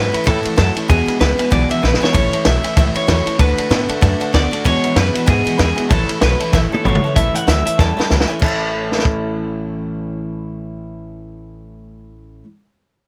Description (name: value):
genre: rockabilly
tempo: 191 BPM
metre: 4/4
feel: swing 59% on 8ths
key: A major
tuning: A4 = 440 Hz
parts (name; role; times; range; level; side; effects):
- electric guitar through a small old amp; melody; 0.0-8.1 s; G#4 to A5; -23 LUFS; equal; analog delay
- honky-tonk upright piano; accompaniment; 0.0-12.4 s; B4 to B5; -32 LUFS; equal; none
- picked steel-string acoustic guitar; accompaniment; 0.0-12.5 s; E2 to F#4; -30 LUFS; equal; none
- electric guitar through a small old amp; riff; 0.0-12.5 s; E2 to A4; -25 LUFS; equal; none
- upright bass; bass; 0.0-12.4 s; G#1 to A2; -22 LUFS; equal; none
- compact cocktail drum kit; drums; 0.1-9.1 s; crash cymbal, hi-hat, kick drum, ride cymbal, snare drum, toms; -20 LUFS; equal; none
room: little or no reverb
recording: none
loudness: -16 LUFS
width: mono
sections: 0.0-7.2 A section; 7.2-8.4 B section; 8.4-10.9 C section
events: drum fill 1.8-2.1, 6.5-7.2, 7.8-8.4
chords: 0.0 A; 0.9 E7; 2.1 A; 3.4 D; 4.6 E7; 5.9 A